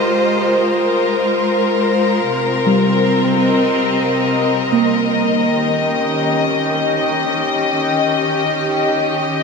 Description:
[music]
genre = ambient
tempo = free time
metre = none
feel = none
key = unclear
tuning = A4 = 440 Hz
[part]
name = dark chamber string section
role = sustained chords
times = 0.0-9.4 s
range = C3 to Eb5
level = -15 LUFS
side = left 2 dB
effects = none
[part]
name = muted felt-like synth keys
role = arpeggios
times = 2.7-5.7 s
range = G3 to Bb3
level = -20 LUFS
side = right 2 dB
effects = chorus, phaser, ping-pong delay
[part]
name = glass harmonica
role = texture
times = 5.4-9.4 s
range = G4 to G5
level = -22 LUFS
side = equal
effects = stereo widening
[sound]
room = wet shimmer reverb, RT60 8.9 s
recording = none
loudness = -14 LUFS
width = side -4 dB against mid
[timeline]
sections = 0.0-5.4 A section; 5.4-9.4 B section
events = none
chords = 0.0 Ab69; 2.3 Cm7; 5.4 Eb7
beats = free time

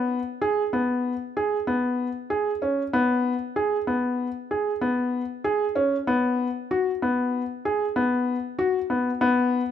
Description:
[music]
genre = contemporary instrumental, contemporary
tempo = 96 BPM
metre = 5/4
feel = straight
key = unclear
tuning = A4 = 440 Hz
[part]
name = felt-muted upright piano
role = solo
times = 0.0-9.6 s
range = B3 to G#4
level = -22 LUFS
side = left 1 dB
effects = none
[sound]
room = light reverb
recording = close, detailed microphones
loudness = -22 LUFS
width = side -9 dB against mid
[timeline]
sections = 0.0-9.7 A section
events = none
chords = none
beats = 0.42 1.05 1.68 2.30 | 2.93 3.56 4.19 4.81 5.44 | 6.07 6.70 7.32 7.95 8.58 | 9.21

